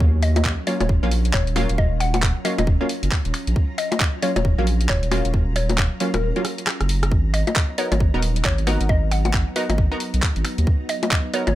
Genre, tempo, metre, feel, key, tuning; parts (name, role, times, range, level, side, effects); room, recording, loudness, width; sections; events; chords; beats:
UK garage, two-step garage; 135 BPM; 4/4; swing 61% on 16ths; G# dorian; A4 = 440 Hz
soft string machine; sustained chords; 0.0-11.6 s; F#3 to A#5; -34 LUFS; equal; ensemble chorus, sidechain pumping
punchy chord stab; stabs; 0.0-11.4 s; F#3 to A#4; -27 LUFS; equal; chorus, tape echo
saturated sub bass; bass; 0.0-11.6 s; D#1 to D#2; -21 LUFS; equal
electronic kick drum; drums; 0.0-11.2 s; -20 LUFS; equal; studio ambience
mallet-like synth pluck; melody; 0.2-11.5 s; A#4 to F#5; -28 LUFS; left 1 dB; chorus, tape echo
garage drum kit; drums; 0.2-11.5 s; bongos, finger snaps, handclaps, hi-hat, rim click; -25 LUFS; left 2 dB; studio ambience
little or no reverb; -18 LUFS; side -14 dB against mid
0.0-11.6 A section
kick drops out 6.2-7.1; drum fill 6.4-7.1
0.0 D#m7; 7.1 G#m7
| 0.00 0.45 0.89 1.34 | 1.78 2.23 2.67 3.12 | 3.56 4.00 4.45 4.89 | 5.34 5.78 6.23 6.67 | 7.12 7.56 8.00 8.45 | 8.89 9.34 9.78 10.23 | 10.67 11.12